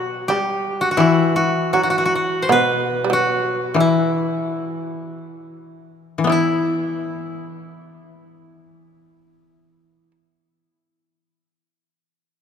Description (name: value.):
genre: japanese traditional.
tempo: 54-87 BPM.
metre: 4/4.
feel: rubato.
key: E hirajoshi.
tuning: A4 = 440 Hz.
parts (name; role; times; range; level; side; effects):
koto; melody; 0.0-10.2 s; E4 to C5; -21 LUFS; equal; none.
shamisen; second line; 0.0-10.1 s; E3 to B3; -23 LUFS; right 4 dB; none.
koto; accompaniment; 0.0-10.2 s; B2 to E4; -21 LUFS; left 5 dB; none.
room: wet church reverb, RT60 3.8 s.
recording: none.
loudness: -17 LUFS.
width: side -7 dB against mid.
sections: 0.0-6.3 A section; 6.3-10.6 B section.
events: slowing down 0.0-6.3.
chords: none.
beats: 0.29 1.00 1.73 | 2.50 3.33 4.22 5.22 | 6.30 7.38 8.43 9.49.